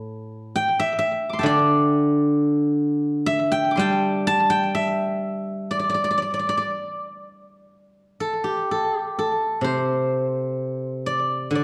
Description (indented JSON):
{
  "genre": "chinese traditional, Chinese solo plucked strings",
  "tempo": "64 BPM",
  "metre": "4/4",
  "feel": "rubato",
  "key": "D shang mode",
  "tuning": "A4 = 440 Hz",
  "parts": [
    { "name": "steel-string zither", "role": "solo", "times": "0.0-11.6 s", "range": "A2 to D6", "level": "-23 LUFS", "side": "equal", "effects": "slapback echo" }
  ],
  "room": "moderate recital hall reverb, RT60 1.4 s",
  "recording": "dark, warm production",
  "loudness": "-22 LUFS",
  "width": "mono",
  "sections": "0.0-7.7 A section; 7.7-11.6 B section",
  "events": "none",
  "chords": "none"
}